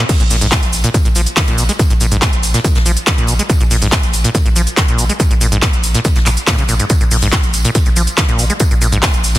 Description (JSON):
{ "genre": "driving peak-time techno", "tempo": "141 BPM", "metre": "4/4", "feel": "straight", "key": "unclear", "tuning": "A4 = 437 Hz", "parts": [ { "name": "acid bass, saw", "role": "riff", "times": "0.0-9.4 s", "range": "Ab2 to Ab3", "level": "-18 LUFS", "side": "equal", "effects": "sidechain pumping, tape echo" }, { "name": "electronic kick drum", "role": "drums", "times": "0.1-9.1 s", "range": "none", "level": "-14 LUFS", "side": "equal", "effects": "none" }, { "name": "jazz brush drum kit", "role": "drums", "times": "0.1-9.4 s", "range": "hi-hat, snare drum, tambourine", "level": "-25 LUFS", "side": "left 2 dB", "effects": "none" }, { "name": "techno drum kit", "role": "drums", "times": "0.1-9.4 s", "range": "crash cymbal, handclaps, hi-hat, shaker", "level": "-17 LUFS", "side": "equal", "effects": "sidechain pumping on hats, sidechain pumping on cymbals, sidechain pumping on perc" }, { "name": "saturated sub bass", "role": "bass", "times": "0.2-9.3 s", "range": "Bb1", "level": "-18 LUFS", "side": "equal", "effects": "tube saturation, sidechain pumping, low-pass filter" } ], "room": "studio reverb", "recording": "dense, heavily limited modern master", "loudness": "-11 LUFS", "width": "side -15 dB against mid", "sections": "0.1-9.4 A section", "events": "drop 0.1-9.4", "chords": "0.1 Bb5", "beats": "| 0.09 0.52 0.94 1.37 | 1.79 2.22 2.65 3.07 | 3.50 3.92 4.35 4.77 | 5.20 5.62 6.05 6.47 | 6.90 7.33 7.75 8.18 | 8.60 9.03" }